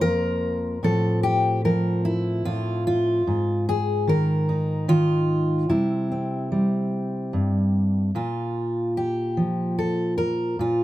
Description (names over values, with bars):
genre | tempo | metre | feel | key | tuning
folk, solo fingerstyle acoustic guitar | 49 BPM (dotted quarters) | 6/8 | straight | unclear | A4 = 440 Hz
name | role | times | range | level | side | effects
fingerpicked steel-string acoustic guitar | solo | 0.0-10.8 s | F2 to C5 | -21 LUFS | equal | none
room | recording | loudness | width
light reverb | close, detailed microphones | -21 LUFS | side -15 dB against mid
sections
0.0-8.1 A section; 8.1-10.8 B section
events
none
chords
0.0 Bb5; 0.8 F/A; 3.3 Absus2; 5.7 C; 8.1 Bb5